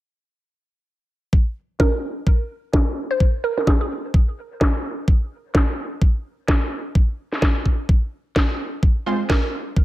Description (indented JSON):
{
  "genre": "bass house",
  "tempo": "128 BPM",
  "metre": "4/4",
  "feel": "swing 58% on 16ths",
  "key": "F minor",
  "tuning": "A4 = 438 Hz",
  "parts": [
    { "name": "electronic kick drum", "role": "drums", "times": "1.3-9.8 s", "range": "none", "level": "-17 LUFS", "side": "equal", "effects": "none" },
    { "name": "glassy wavetable pluck", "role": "melody", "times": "1.8-3.9, 9.3-9.4 s", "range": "Ab4 to C5", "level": "-26 LUFS", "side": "right 2 dB", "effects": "chorus, dub echo" },
    { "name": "electronic snare drum", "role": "drums", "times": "1.8-9.4 s", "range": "none", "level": "-23 LUFS", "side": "equal", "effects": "low-pass filter on snare, low-pass filter on room" },
    { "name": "orchestra-hit-like synth stab", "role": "stabs", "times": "9.1-9.2 s", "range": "Ab3 to C5", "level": "-24 LUFS", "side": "right 2 dB", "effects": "built-in reverb, sidechain pumping" }
  ],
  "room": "digital ambience",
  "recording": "none",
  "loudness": "-18 LUFS",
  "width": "side -16 dB against mid",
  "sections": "1.3-9.8 A section",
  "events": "filter sweep on drum 1.3-9.8",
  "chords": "1.3 Fm",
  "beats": "| 1.33 1.80 2.27 2.73 | 3.20 3.67 4.14 4.61 | 5.08 5.55 6.02 6.49 | 6.95 7.42 7.89 8.36 | 8.83 9.30 9.77"
}